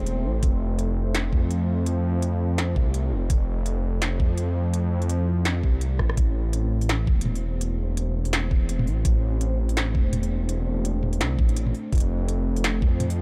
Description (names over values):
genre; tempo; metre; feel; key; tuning
half-time drum and bass; 167 BPM; 4/4; swing 57% on 16ths, half-time; unclear; A4 = 440 Hz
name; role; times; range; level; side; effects
deep dark ambient pad; sustained chords; 0.0-13.2 s; A3 to C5; -35 LUFS; equal; chorus, built-in reverb, sidechain pumping
dark detuned saw bass; bass; 0.0-13.2 s; E1 to F2; -27 LUFS; equal; none
industrial drum kit; drums; 0.1-13.2 s; hi-hat, rim click, snare drum, toms; -31 LUFS; equal; none
electronic kick drum; drums; 0.4-12.9 s; none; -24 LUFS; equal; none
room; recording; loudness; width
little or no reverb; dark, warm production; -24 LUFS; mono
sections
0.0-13.2 A section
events
drum fill 6.0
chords
0.4 F; 6.2 Am; 11.9 F